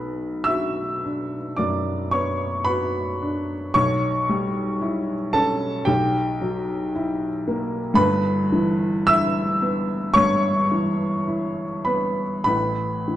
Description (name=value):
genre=classical, romantic nocturne for solo piano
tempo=48-59 BPM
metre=4/4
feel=rubato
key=B minor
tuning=A4 = 441 Hz
part: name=warm upright piano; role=solo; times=0.0-13.2 s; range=G1 to E6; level=-20 LUFS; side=equal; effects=none
room=moderate recital hall reverb, RT60 1.7 s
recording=dark, warm production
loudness=-20 LUFS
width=side -12 dB against mid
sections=0.0-13.2 A section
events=none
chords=0.0 Bm; 3.8 C#dim/B; 5.9 F#7b9/B; 8.0 Em/G; 12.5 A5